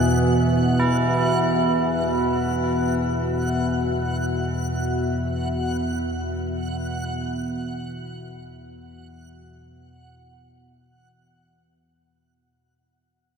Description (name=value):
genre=dark ambient drone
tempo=free time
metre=none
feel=none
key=unclear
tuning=A4 = 440 Hz
part: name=deep dark ambient pad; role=sustained chords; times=0.0-12.4 s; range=B3 to E5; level=-27 LUFS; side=right 2 dB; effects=chorus, built-in reverb, shimmer reverb
part: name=tubular bells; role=arpeggios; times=0.0-12.5 s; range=E4 to G#4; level=-28 LUFS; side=right 1 dB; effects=ping-pong delay, shimmer reverb
part: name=analog drone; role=drone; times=0.0-12.6 s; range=E2 to B2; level=-24 LUFS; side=left 1 dB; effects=chorus
part: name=backwards swelling texture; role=texture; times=0.0-12.4 s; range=F#5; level=-32 LUFS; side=equal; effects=built-in reverb, shimmer reverb
room=wet huge ambient reverb, RT60 8.6 s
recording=none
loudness=-21 LUFS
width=side -6 dB against mid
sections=0.0-12.4 A section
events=fade-out 0.0-12.4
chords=0.0 Esus2